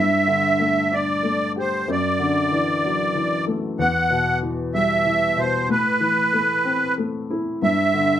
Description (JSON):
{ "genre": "pop", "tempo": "63 BPM (dotted quarters)", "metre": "6/8", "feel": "straight", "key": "G major", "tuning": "A4 = 440 Hz", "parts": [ { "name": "musette accordion", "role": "melody", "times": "0.0-8.2 s", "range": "B4 to F#5", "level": "-20 LUFS", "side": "right 1 dB", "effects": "none" }, { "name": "warm baby grand piano", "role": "accompaniment", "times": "0.0-8.2 s", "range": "E2 to G4", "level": "-22 LUFS", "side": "left 2 dB", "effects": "none" } ], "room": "wet studio ambience, RT60 0.5 s", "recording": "band playing live in one room", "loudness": "-18 LUFS", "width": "side -11 dB against mid", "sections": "0.0-8.2 A section", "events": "none", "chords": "0.0 Gsus2; 1.9 Dadd9/F#; 3.8 Emadd9; 5.7 Amadd9; 7.6 G5" }